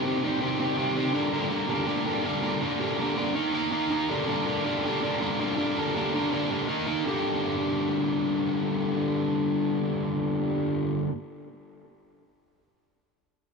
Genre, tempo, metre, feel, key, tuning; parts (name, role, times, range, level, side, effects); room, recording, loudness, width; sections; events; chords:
punk; 162 BPM; 4/4; straight; G minor; A4 = 440 Hz
distorted electric guitar; solo; 0.0-11.1 s; G2 to Bb4; -25 LUFS; equal; distortion, cassette tape, analog delay
moderate small room reverb, RT60 0.5 s; home recording on cassette; -25 LUFS; side -4 dB against mid
0.0-1.1 A section; 1.1-7.1 B section; 7.1-10.0 C section
0.0 Cm; 1.1 Gm; 3.4 Eb5; 4.1 Gm; 6.7 Eb5; 7.1 Gm